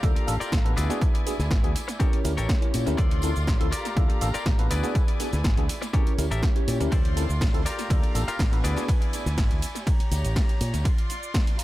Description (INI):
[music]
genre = filtered disco house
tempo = 122 BPM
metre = 4/4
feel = straight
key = D minor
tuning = A4 = 441 Hz
[part]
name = tine electric piano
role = accompaniment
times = 0.0-8.9 s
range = Bb3 to C#5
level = -32 LUFS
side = left 1 dB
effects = phaser, sidechain pumping, analog delay
[part]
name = rich chamber string section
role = sustained chords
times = 0.0-11.6 s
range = D4 to C6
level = -36 LUFS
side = equal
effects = sidechain pumping
[part]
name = direct-recorded clean electric guitar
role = riff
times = 0.0-8.8 s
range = E4 to F5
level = -35 LUFS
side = left 4 dB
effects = sidechain pumping, analog delay
[part]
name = fingered electric bass with an envelope filter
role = bass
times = 0.0-10.8 s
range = G#1 to Bb2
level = -27 LUFS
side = equal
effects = sidechain pumping
[part]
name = electronic kick drum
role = drums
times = 0.0-11.4 s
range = none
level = -23 LUFS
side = equal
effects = overdrive
[part]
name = punchy analog drum machine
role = drums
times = 0.0-11.6 s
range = hi-hat, ride cymbal, shaker, snare drum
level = -34 LUFS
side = right 1 dB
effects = overdrive, sidechain pumping on hats, sidechain pumping on perc, sidechain pumping on cymbals, analog delay
[part]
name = tambourine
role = percussion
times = 0.0-10.8 s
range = none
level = -45 LUFS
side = left 5 dB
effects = sidechain pumping on perc, analog delay
[sound]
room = digital ambience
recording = echo-heavy mix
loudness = -22 LUFS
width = side -16 dB against mid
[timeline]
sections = 0.0-11.6 A section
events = none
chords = 0.0 Gm7/D; 0.8 E7/D; 2.0 A7b9; 3.0 Dm7; 3.7 Gm7/D; 4.7 E7/D; 5.9 A7b9; 6.9 Dm7; 7.7 Gm7/D; 8.6 E7/D; 9.9 A7b9 (rootless); 10.9 Dm7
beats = 0.03 0.53 | 1.02 1.51 2.00 2.49 | 2.98 3.48 3.97 4.46 | 4.95 5.44 5.93 6.43 | 6.92 7.41 7.90 8.39 | 8.89 9.38 9.87 10.36 | 10.85 11.35